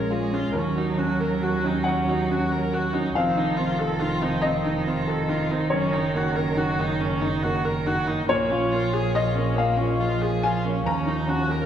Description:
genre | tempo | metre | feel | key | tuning
neoclassical piano and strings | 47 BPM (dotted quarters) | 6/8 | rubato | unclear | A4 = 441 Hz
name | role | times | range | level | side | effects
rich cello | second line | 0.0-11.7 s | Eb3 to Ab3 | -28 LUFS | right 4 dB | none
clear upright piano | accompaniment | 0.0-11.7 s | Bb1 to Bb5 | -25 LUFS | left 1 dB | none
rich viola | accompaniment | 0.0-11.7 s | Bb3 to Bb4 | -28 LUFS | right 1 dB | none
warm double bass | bass | 0.0-11.7 s | F1 to Eb2 | -29 LUFS | equal | none
room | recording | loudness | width
wet recital hall reverb, RT60 1.8 s | recorded in a church or concert hall | -21 LUFS | side -9 dB against mid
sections
0.0-11.7 A section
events
none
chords
0.0 Bbm7; 0.5 Ebm7; 3.2 F7; 5.7 Ebm7/Gb; 8.3 Bbm7; 10.9 Ebm7

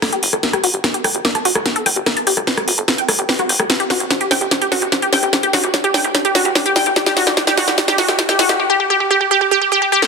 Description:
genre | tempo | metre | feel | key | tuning
psychedelic trance | 147 BPM | 4/4 | straight | unclear | A4 = 440 Hz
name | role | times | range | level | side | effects
wide unison pluck | riff | 0.0-10.1 s | F#4 to A5 | -16 LUFS | moving between left 4 dB and right 5 dB | auto-pan, vintage 12-bit sampler grit, sidechain pumping, tape echo
drum and bass drum kit | drums | 0.0-10.1 s | hi-hat, rim click, snare drum | -16 LUFS | equal | none
electronic kick drum | drums | 0.0-8.3 s | none | -27 LUFS | equal | none
tight sequencer bass | bass | 0.2-8.6 s | G1 | -28 LUFS | equal | tube saturation, high-pass filter
room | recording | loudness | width
moderate plate reverb, RT60 1.9 s | dense, heavily limited modern master, high-pass filter | -13 LUFS | side -4 dB against mid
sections
0.0-10.1 A section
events
build-up 0.0-10.1; drum fill 0.0-8.6; filter sweep on synth arpeggio sound 0.0-10.1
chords
0.0 G5

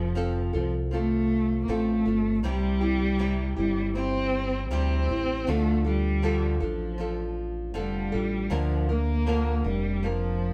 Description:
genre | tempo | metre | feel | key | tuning
pop | 79 BPM | 4/4 | swing 55% on 16ths | F major | A4 = 441 Hz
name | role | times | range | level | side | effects
warm cello | melody | 0.0-10.5 s | F3 to C4 | -30 LUFS | equal | none
nylon-string guitar | accompaniment | 0.0-10.5 s | C3 to Bb4 | -33 LUFS | equal | none
fingered electric bass with an envelope filter | bass | 0.0-10.5 s | F1 to D2 | -31 LUFS | equal | none
room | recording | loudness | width
light reverb | band playing live in one room | -27 LUFS | mono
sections
0.0-10.5 A section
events
none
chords
0.0 F; 2.4 C; 5.5 Dm; 8.5 Bb

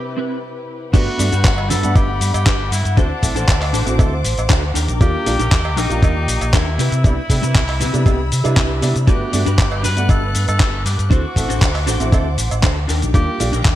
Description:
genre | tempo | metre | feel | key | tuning
nu-disco, nu disco | 118 BPM | 4/4 | straight | G major | A4 = 437 Hz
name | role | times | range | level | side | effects
bright tenor saxophone | melody | 0.0-13.6 s | D4 to B4 | -26 LUFS | left 1 dB | ping-pong delay
clear grand piano | accompaniment | 0.0-13.5 s | C3 to F#5 | -25 LUFS | right 2 dB | none
muted studio string section | sustained chords | 0.0-13.8 s | C3 to F#6 | -28 LUFS | left 2 dB | sidechain pumping
clean electric guitar | riff | 0.2-13.7 s | C4 to C5 | -26 LUFS | left 1 dB | ensemble chorus, low-pass filter
overdriven fingered electric bass | bass | 0.9-13.8 s | G1 to C3 | -19 LUFS | equal | none
dusty soul sampler-style drum kit | drums | 0.9-13.8 s | crash cymbal, handclaps, hi-hat, shaker | -23 LUFS | left 1 dB | gated reverb
electronic kick drum | drums | 0.9-13.8 s | none | -14 LUFS | equal | none
cowbell | percussion | 1.6-12.6 s | none | -32 LUFS | right 7 dB | none
room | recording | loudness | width
light reverb, studio reverb | bright 1980s-style digital production | -14 LUFS | side -13 dB against mid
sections
0.9-13.8 A section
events
break 0.4-0.9; drop 0.9-13.8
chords
0.0 Cmaj7; 0.9 Gmaj7; 3.0 D7; 4.8 Ebmaj7; 6.8 Cmaj7; 9.1 Gmaj7; 11.1 D7; 12.9 Ebmaj7

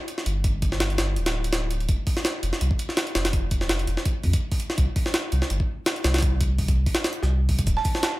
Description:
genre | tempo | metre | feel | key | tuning
drum and bass, jungle | 166 BPM | 4/4 | swing 54% on 16ths | unclear | A4 = 438 Hz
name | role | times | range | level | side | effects
jungle sampler-style drum kit | drums | 0.1-8.1 s | hi-hat, kick drum, snare drum | -24 LUFS | equal | none
saturated sub bass | bass | 0.3-7.8 s | D1 to F2 | -24 LUFS | equal | none
electronic shaker and snare drum | drums | 7.7-8.1 s | none | -34 LUFS | right 2 dB | high-pass filter on perc, high-pass filter on snare
soft synth bell | melody | 7.8-8.0 s | A5 | -27 LUFS | right 5 dB | chorus, dub echo
room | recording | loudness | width
little or no reverb | none | -22 LUFS | side -18 dB against mid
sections
0.0-8.2 A section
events
none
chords
0.0 G5; 1.9 F5; 4.8 C5; 7.7 D5

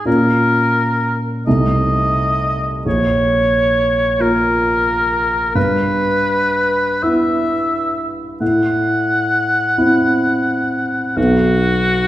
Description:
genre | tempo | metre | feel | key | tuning
classical, romantic duo for oboe and grand piano | 43 BPM (dotted quarters) | 6/8 | uneven beats, rubato | E minor from 5.6 s | A4 = 440 Hz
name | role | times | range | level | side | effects
clear oboe | melody | 0.0-12.1 s | F#4 to F#5 | -17 LUFS | equal | none
warm concert grand piano | accompaniment | 0.0-12.1 s | Bb1 to F4 | -17 LUFS | equal | none
room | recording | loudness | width
wet recital hall reverb, RT60 1.5 s | heard from further back in the room | -14 LUFS | side -14 dB against mid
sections
0.0-12.1 A section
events
none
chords
0.1 Bbm; 1.5 Adim/C; 2.9 Bbm; 5.6 Em/G; 8.4 F#m7b5/A; 11.2 B

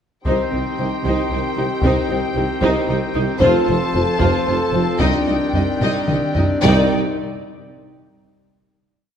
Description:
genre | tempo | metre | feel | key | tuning
cinematic, epic orchestral film score | 75 BPM (dotted quarters) | 6/8 | straight | C dorian | A4 = 440 Hz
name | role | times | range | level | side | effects
pipe organ, foundations | sustained chords | 0.2-6.9 s | C4 to D5 | -23 LUFS | equal | none
warm symphonic violin section | melody | 0.3-6.9 s | G5 to A5 | -28 LUFS | left 4 dB | none
warm symphonic violin section | second line | 0.3-6.9 s | C5 to Eb5 | -23 LUFS | left 2 dB | none
rich symphonic viola section | accompaniment | 0.3-7.0 s | Eb4 to F4 | -25 LUFS | right 2 dB | none
warm French horn section | sustained chords | 0.3-6.9 s | Eb3 to D5 | -27 LUFS | left 4 dB | none
rich symphonic double bass section | bass | 0.3-6.9 s | F1 to C2 | -26 LUFS | right 2 dB | none
warm symphonic cello section | bass | 0.3-6.9 s | C2 to C3 | -26 LUFS | right 3 dB | none
warm tuba | bass | 0.3-6.9 s | F1 to C2 | -25 LUFS | right 2 dB | none
taiko ensemble | drums | 0.3-6.8 s | none | -23 LUFS | equal | none
room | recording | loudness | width
wet scoring stage reverb, RT60 1.8 s | none | -16 LUFS | side -8 dB against mid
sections
0.3-6.6 theme; 6.6-8.3 final chord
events
drum fill 5.8-6.6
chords
0.3 Cm; 3.4 F; 5.0 Cmadd9

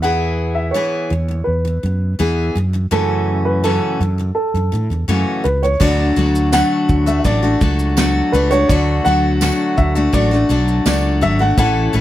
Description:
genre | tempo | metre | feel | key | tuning
acoustic pop | 83 BPM | 4/4 | straight | unclear | A4 = 440 Hz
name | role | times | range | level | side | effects
dark upright piano | melody | 0.0-12.0 s | A4 to F#5 | -20 LUFS | right 1 dB | none
picked steel-string acoustic guitar | accompaniment | 0.0-12.0 s | F#2 to A4 | -18 LUFS | left 2 dB | none
fretless electric bass | bass | 0.0-12.0 s | G#1 to A2 | -18 LUFS | right 1 dB | none
soft brush drum kit | drums | 5.8-12.0 s | crash cymbal, kick drum, shaker, snare drum | -20 LUFS | equal | none
tambourine | percussion | 6.5-11.0 s | none | -29 LUFS | right 10 dB | none
room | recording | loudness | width
light reverb | none | -14 LUFS | side -13 dB against mid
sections
0.0-5.8 A section; 5.8-12.0 B section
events
none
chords
0.0 E; 2.6 F#m7; 5.8 D

